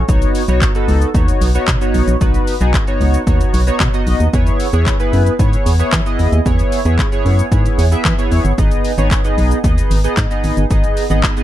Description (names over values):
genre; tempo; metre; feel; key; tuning
dance-pop; 113 BPM; 4/4; straight; unclear; A4 = 439 Hz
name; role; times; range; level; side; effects
chorused polysynth; accompaniment; 0.0-11.4 s; B3 to E5; -18 LUFS; right 1 dB; sidechain pumping
organ-like FM bass; bass; 0.0-11.3 s; G1 to E3; -14 LUFS; equal; sidechain pumping
house drum kit; drums; 0.1-11.4 s; handclaps, hi-hat, kick drum, shaker; -16 LUFS; equal; none
room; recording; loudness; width
little or no reverb; dark, warm production; -12 LUFS; side -13 dB against mid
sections
0.0-11.4 A section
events
none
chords
0.1 Badd9; 4.3 E6; 8.6 G#m